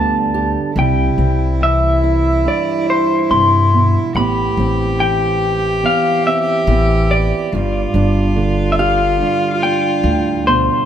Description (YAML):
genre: acoustic folk-pop ballad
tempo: 71 BPM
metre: 4/4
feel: straight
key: C major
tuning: A4 = 440 Hz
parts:
  - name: electric guitar through a small old amp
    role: melody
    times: 0.0-10.9 s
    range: C5 to C6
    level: -17 LUFS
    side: left 3 dB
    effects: harmonic tremolo
  - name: warm cello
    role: second line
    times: 0.0-10.9 s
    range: E4 to G4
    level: -20 LUFS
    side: right 2 dB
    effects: none
  - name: fingerpicked acoustic archtop guitar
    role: accompaniment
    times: 0.0-10.9 s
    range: E2 to G4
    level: -20 LUFS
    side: right 6 dB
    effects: none
  - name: upright bass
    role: bass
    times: 0.0-10.7 s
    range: G1 to G2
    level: -17 LUFS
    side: left 1 dB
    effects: none
room: light reverb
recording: close, detailed microphones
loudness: -13 LUFS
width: side -9 dB against mid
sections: 0.0-10.9 A section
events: none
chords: 0.0 Gadd9; 0.8 C; 4.2 Amadd9; 7.5 G5